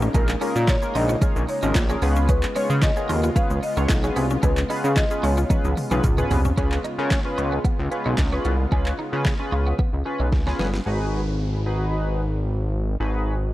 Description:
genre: dance-pop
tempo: 112 BPM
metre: 4/4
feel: straight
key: unclear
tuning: A4 = 442 Hz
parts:
  - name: soft supersaw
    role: sustained chords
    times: 0.0-10.8 s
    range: C#3 to E#4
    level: -32 LUFS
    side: equal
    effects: sidechain pumping
  - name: mallet-like synth pluck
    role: arpeggios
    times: 0.0-6.6 s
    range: G#3 to G#4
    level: -33 LUFS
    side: left 2 dB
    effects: chorus, sidechain pumping, tape echo
  - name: chorused synth bass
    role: bass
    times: 0.0-13.5 s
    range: G1 to C#3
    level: -22 LUFS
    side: equal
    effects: sidechain pumping
  - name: deep house drum kit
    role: drums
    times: 0.0-10.9 s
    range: handclaps, hi-hat, kick drum, shaker, snare drum, toms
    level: -23 LUFS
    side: equal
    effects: overdrive
  - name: marimba with medium hard mallets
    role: melody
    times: 0.1-6.3 s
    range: A#4 to E#5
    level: -29 LUFS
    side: left 1 dB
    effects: tape echo
  - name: chorused polysynth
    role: accompaniment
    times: 0.1-13.4 s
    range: A#3 to C#5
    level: -28 LUFS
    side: equal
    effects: tremolo, sidechain pumping
  - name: twelve-string electric guitar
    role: riff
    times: 0.1-10.7 s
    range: A#3 to E#4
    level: -34 LUFS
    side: right 3 dB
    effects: ensemble chorus
  - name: downlifter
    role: sound effects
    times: 10.9-13.5 s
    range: none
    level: -40 LUFS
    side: equal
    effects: none
room: digital ambience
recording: dry, gritty hardware recording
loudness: -20 LUFS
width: side -16 dB against mid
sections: 0.0-6.6 A section; 6.6-10.9 B section; 10.9-13.5 C section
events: drum fill 5.5-6.6, 10.3-10.9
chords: 0.0 A#m7; 2.0 C#7; 10.9 G#m7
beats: | 0.15 0.68 1.22 1.75 | 2.29 2.83 3.36 3.90 | 4.43 4.97 5.50 6.04 | 6.58 7.11 7.65 8.18 | 8.72 9.25 9.79 10.32 | 10.86 11.40 11.93 12.47 | 13.00

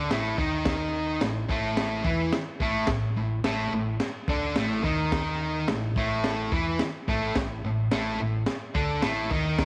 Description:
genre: garage rock duo or trio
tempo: 107 BPM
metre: 4/4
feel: straight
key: unclear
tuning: A4 = 438 Hz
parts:
  - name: fuzz guitar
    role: riff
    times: 0.0-9.7 s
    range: A2 to E4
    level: -29 LUFS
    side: equal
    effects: distortion
  - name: hollow-body short-scale fingered electric bass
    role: bass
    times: 0.0-9.7 s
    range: A1 to E2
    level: -36 LUFS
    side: equal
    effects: tube saturation
  - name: crunchy breakbeat drum kit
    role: drums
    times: 0.1-9.7 s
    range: crash cymbal, kick drum, snare drum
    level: -32 LUFS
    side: equal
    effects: none
room: moderate echo chamber reverb, RT60 1.7 s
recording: none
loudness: -27 LUFS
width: mono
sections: 0.0-9.7 A section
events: none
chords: 0.0 A5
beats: 0.10 | 0.66 1.22 1.78 2.34 | 2.90 3.46 4.01 4.57 | 5.13 5.69 6.25 6.81 | 7.37 7.92 8.48 9.04 | 9.60

